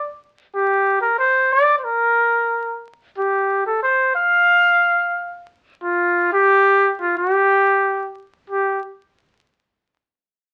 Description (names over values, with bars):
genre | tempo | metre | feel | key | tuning
andean folk | 90 BPM | 2/4 | straight | G minor pentatonic | A4 = 441 Hz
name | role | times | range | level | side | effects
mellow trumpet | solo | 0.0-8.8 s | F4 to F5 | -18 LUFS | equal | none
room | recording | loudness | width
moderate small room reverb, RT60 0.5 s | very old 78 rpm record, vinyl crackle | -18 LUFS | mono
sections
0.0-8.5 A section; 8.5-9.8 B section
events
none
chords
none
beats
| 0.53 1.20 | 1.86 2.52 | 3.19 3.85 | 4.51 5.17 | 5.84 6.50 | 7.16 7.83 | 8.49